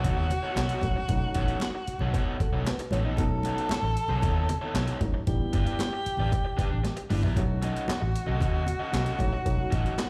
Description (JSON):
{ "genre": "funk", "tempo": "115 BPM", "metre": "4/4", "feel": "straight", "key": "B mixolydian", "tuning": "A4 = 442 Hz", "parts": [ { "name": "clear baritone saxophone", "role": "second line", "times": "0.0-10.1 s", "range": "F#4 to A4", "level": "-35 LUFS", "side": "equal", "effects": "slapback echo" }, { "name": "crunchy overdriven guitar", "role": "accompaniment", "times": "0.0-10.0 s", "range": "B3 to E5", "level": "-39 LUFS", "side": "equal", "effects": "slapback echo" }, { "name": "vintage muted fingered electric bass", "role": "bass", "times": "0.0-9.8 s", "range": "G1 to D#2", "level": "-31 LUFS", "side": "equal", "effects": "none" }, { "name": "breakbeat sampler-style drum kit", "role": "drums", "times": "0.0-10.1 s", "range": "handclaps, hi-hat, kick drum, snare drum, toms", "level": "-33 LUFS", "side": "equal", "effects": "none" }, { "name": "congas", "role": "percussion", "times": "0.0-10.1 s", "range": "none", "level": "-40 LUFS", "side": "equal", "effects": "none" }, { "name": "dark upright piano", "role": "stabs", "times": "0.8-10.0 s", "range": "F#3 to C#5", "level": "-37 LUFS", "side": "equal", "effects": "slapback echo" } ], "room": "light reverb, digital ambience", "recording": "live gig heard through the venue's PA, club reverb", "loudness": "-28 LUFS", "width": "mono", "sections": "0.0-10.1 A section", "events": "upright piano fill 2.1-3.2; drum fill 6.8-7.4", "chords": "0.0 B9; 5.3 A9sus4; 7.4 B9" }